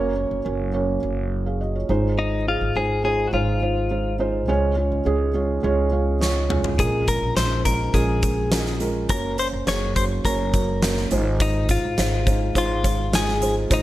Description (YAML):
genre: piano-driven pop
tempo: 104 BPM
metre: 4/4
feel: straight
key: unclear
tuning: A4 = 440 Hz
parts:
  - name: felt-muted upright piano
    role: accompaniment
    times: 0.0-13.8 s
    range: Ab2 to Db6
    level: -24 LUFS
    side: right 3 dB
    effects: none
  - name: upright bass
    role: bass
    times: 0.0-13.8 s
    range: Gb1 to Db2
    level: -25 LUFS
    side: equal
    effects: none
  - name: direct-recorded clean electric guitar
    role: melody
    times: 2.2-13.8 s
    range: Eb4 to Db5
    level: -25 LUFS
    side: left 3 dB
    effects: none
  - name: huge arena drum kit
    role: drums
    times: 6.2-13.8 s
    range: hi-hat, kick drum, snare drum, toms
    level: -24 LUFS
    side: equal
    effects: none
room: light reverb, studio reverb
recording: none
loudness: -19 LUFS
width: side -15 dB against mid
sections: 0.0-13.8 A section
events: felt piano fill 5.6-6.8; drum fill 6.2-6.8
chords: 0.0 Gb; 1.9 Ab6; 4.5 Db; 6.8 Bbm7; 9.1 Gb; 11.1 Ab6